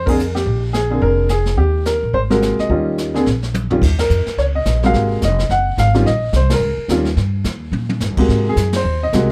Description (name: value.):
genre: jazz piano trio.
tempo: 214 BPM.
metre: 4/4.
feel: swing 60% on 8ths.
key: unclear.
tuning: A4 = 441 Hz.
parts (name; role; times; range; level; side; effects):
clear upright piano; melody; 0.0-9.3 s; C3 to Gb5; -19 LUFS; equal; none.
upright bass; bass; 0.0-9.3 s; F1 to Bb2; -20 LUFS; equal; none.
jazz brush drum kit; drums; 0.1-9.3 s; brushed snare drum, crash cymbal, hi-hat, kick drum, ride cymbal, snare drum, toms; -26 LUFS; equal; none.
room: light reverb.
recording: dark, warm production.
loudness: -17 LUFS.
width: mono.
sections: 0.0-3.8 A section; 3.8-9.3 A section.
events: band accent 0.0, 4.0, 6.5, 8.7; drum fill 3.3-3.8, 7.7.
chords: 0.0 Bb9; 1.6 Eb; 2.1 Ab9; 2.7 Eb9; 3.3 Bb5; 3.8 Ebsus2; 4.9 Ab9; 6.1 Eb7; 8.3 Ab9.